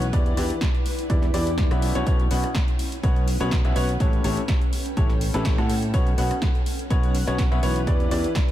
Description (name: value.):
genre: piano house.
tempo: 124 BPM.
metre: 4/4.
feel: swing 54% on 16ths.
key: B minor.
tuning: A4 = 439 Hz.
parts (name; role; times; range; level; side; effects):
bright grand piano; riff; 0.0-8.3 s; A2 to F#5; -27 LUFS; left 1 dB; sidechain pumping, diffuse ambient delay.
overdriven fingered electric bass; bass; 0.0-8.2 s; A1 to A2; -26 LUFS; equal; tube saturation, sidechain pumping.
house drum kit; drums; 0.0-8.5 s; hi-hat, rim click, snare drum; -33 LUFS; equal; none.
granular cloud pad; texture; 0.0-8.5 s; C#4 to G5; -33 LUFS; right 1 dB; built-in reverb, sidechain pumping.
electronic kick drum; drums; 0.1-8.5 s; none; -22 LUFS; equal; none.
room: light reverb.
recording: none.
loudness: -20 LUFS.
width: side -13 dB against mid.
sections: 0.0-8.5 A section.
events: none.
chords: 0.1 Em7; 1.8 Bsus2; 4.0 A7; 5.9 Bsus2; 7.9 Em7.